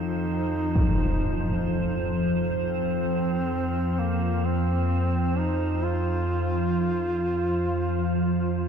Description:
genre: dark ambient drone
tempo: free time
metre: none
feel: none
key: unclear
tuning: A4 = 440 Hz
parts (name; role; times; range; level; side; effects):
- mellow duduk; melody; 0.0-8.7 s; Bb3 to F4; -29 LUFS; equal; tape echo
- gamelan-type bronze metallophone; arpeggios; 0.0-5.4 s; Eb3 to F4; -44 LUFS; left 1 dB; none
- organ-like drone; drone; 0.0-8.7 s; F2 to F3; -25 LUFS; equal; ensemble chorus, built-in reverb
- icy glass pad; texture; 0.0-8.7 s; C5; -34 LUFS; right 4 dB; chorus, built-in reverb
- impact; percussion; 0.8-0.9 s; none; -28 LUFS; equal; low-pass filter on sfx
room: wet cathedral reverb, RT60 5.1 s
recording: dark, warm production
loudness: -23 LUFS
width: side -7 dB against mid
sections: 0.0-8.7 A section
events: none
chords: 0.0 F5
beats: free time

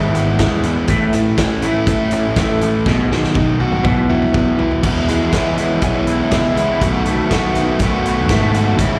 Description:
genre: indie rock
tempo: 122 BPM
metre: 4/4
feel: straight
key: E major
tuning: A4 = 439 Hz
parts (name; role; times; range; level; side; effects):
- electric guitar through a small old amp; riff; 0.0-9.0 s; E2 to F#4; -25 LUFS; equal; ensemble chorus, digital delay
- overdriven electric guitar; riff; 0.0-9.0 s; E2 to F#4; -19 LUFS; equal; slapback echo
- growling fingered electric bass; bass; 0.0-9.0 s; G#1 to E3; -22 LUFS; equal; overdrive
- loose indie drum kit; drums; 0.1-8.9 s; crash cymbal, hi-hat, kick drum, snare drum, toms; -22 LUFS; equal; none
room: light reverb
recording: live gig heard through the venue's PA, recital hall reverb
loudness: -16 LUFS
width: mono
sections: 0.0-4.8 A section; 4.8-9.0 B section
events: drum fill 2.9-4.8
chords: 0.0 C#m7/G#; 0.9 A; 2.9 G#m7/B; 3.9 Bsus4; 4.8 E6; 6.8 B7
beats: 0.41 | 0.90 1.39 1.89 2.38 | 2.87 3.37 3.86 4.35 | 4.85 5.34 5.84 6.33 | 6.82 7.32 7.81 8.31 | 8.80

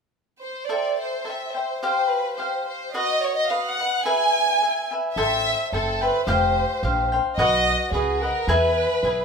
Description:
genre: mexican folk, mariachi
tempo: 108 BPM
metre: 2/4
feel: straight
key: unclear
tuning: A4 = 440 Hz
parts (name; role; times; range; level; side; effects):
- rich chamber violin section; melody; 0.4-9.2 s; G#4 to G#5; -23 LUFS; right 1 dB; none
- cavaquinho; accompaniment; 0.7-9.2 s; F#4 to G#5; -24 LUFS; left 2 dB; none
- upright bass; bass; 5.2-9.2 s; F1 to E2; -27 LUFS; right 1 dB; none
room: wet stone room reverb, RT60 0.9 s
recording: band playing live in one room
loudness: -20 LUFS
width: side -5 dB against mid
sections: 0.7-5.2 A section; 5.2-9.2 B section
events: none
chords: 0.0 N.C.; 0.7 Am7; 1.8 Fsus2; 2.9 B; 4.0 E; 5.2 Am7; 6.3 Fsus2; 7.4 B; 8.5 E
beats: 0.13 | 0.70 1.26 | 1.82 2.38 | 2.94 3.49 | 4.05 4.60 | 5.17 5.73 | 6.28 6.83 | 7.38 7.93 | 8.48 9.03

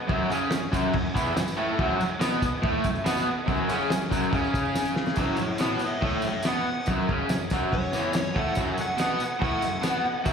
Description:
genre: garage rock duo or trio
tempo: 142 BPM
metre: 4/4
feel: straight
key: unclear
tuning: A4 = 440 Hz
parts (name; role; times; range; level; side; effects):
- raw garage guitar; riff; 0.1-10.3 s; E2 to C#4; -26 LUFS; equal; overdrive, slapback echo
- cloth-damped thuddy drum kit; drums; 0.1-10.3 s; crash cymbal, kick drum, snare drum; -28 LUFS; equal; none
- tambourine; percussion; 0.3-10.3 s; none; -41 LUFS; right 2 dB; none
- overdriven slide guitar; melody; 5.2-10.3 s; E4 to F#5; -30 LUFS; left 1 dB; slapback echo
room: light reverb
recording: live gig heard through the venue's PA, recital hall reverb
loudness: -23 LUFS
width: side -6 dB against mid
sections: 0.0-5.2 A section; 5.2-10.3 B section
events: drum fill 4.8-5.2; electric slide guitar solo 5.2-10.3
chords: 0.0 F#5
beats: | 0.09 0.52 0.94 1.37 | 1.79 2.21 2.64 3.06 | 3.49 3.91 4.33 4.76 | 5.18 5.61 6.03 6.46 | 6.88 7.30 7.73 8.15 | 8.57 9.00 9.42 9.85 | 10.27

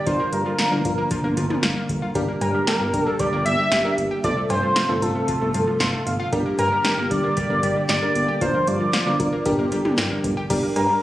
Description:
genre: synth-pop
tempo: 115 BPM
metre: 4/4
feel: straight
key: G minor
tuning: A4 = 441 Hz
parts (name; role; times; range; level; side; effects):
- octave-doubled lead; melody; 0.0-11.0 s; A4 to E5; -23 LUFS; equal; chorus, phaser, tape echo
- chorused pulse-width pad; sustained chords; 0.0-10.5 s; C3 to G4; -27 LUFS; equal; none
- FM electric piano with soft pad layer; accompaniment; 0.1-11.0 s; C4 to C6; -26 LUFS; equal; chorus
- analog pluck; arpeggios; 0.1-11.0 s; F3 to G4; -31 LUFS; left 1 dB; chorus, tape echo
- chorused synth bass; bass; 0.1-10.9 s; G1 to G2; -26 LUFS; equal; none
- electro analog drum machine; drums; 0.1-10.9 s; cowbell, crash cymbal, hi-hat, kick drum, snare drum, toms; -26 LUFS; equal; none
room: light reverb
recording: recorded on a phone in the room, studio reverb, compression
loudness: -19 LUFS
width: side -14 dB against mid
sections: 0.0-10.5 A section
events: FM electric piano fill 5.5-6.3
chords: 0.1 Bb/G; 2.2 Gm; 4.2 F/G; 6.3 Gm; 8.4 Bb/G; 9.5 Gm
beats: | 0.07 0.59 1.11 1.63 | 2.15 2.67 3.20 3.72 | 4.24 4.76 5.28 5.80 | 6.33 6.85 7.37 7.89 | 8.41 8.94 9.46 9.98 | 10.50 11.02

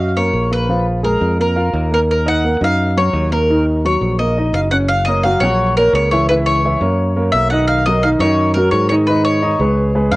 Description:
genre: Afro-Cuban jazz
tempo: 172 BPM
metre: 4/4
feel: straight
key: Eb minor, F# major from 4.9 s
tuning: A4 = 442 Hz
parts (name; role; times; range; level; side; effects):
- mandolin; melody; 0.0-10.2 s; Bb4 to Gb5; -18 LUFS; left 1 dB; cassette tape
- warm upright piano; accompaniment; 0.0-10.2 s; Eb3 to F#5; -17 LUFS; right 1 dB; cassette tape
- fingered electric bass; bass; 0.0-10.2 s; Gb1 to G#2; -18 LUFS; equal; none
room: light reverb, small room ambience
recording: home recording on cassette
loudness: -13 LUFS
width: side -20 dB against mid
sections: 0.0-4.9 A section; 4.9-10.2 B section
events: none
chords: 0.0 Bmaj9; 0.7 Bb5; 2.1 Ebm7; 4.9 F#; 6.3 C#m; 7.0 F#; 7.7 Bmaj7; 9.1 G#m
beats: 0.34 | 0.69 1.04 1.39 1.74 | 2.09 2.44 2.79 3.14 | 3.49 3.84 4.19 4.54 | 4.89 5.24 5.59 5.94 | 6.29 6.63 6.98 7.33 | 7.68 8.03 8.38 8.73 | 9.08 9.43 9.78 10.12

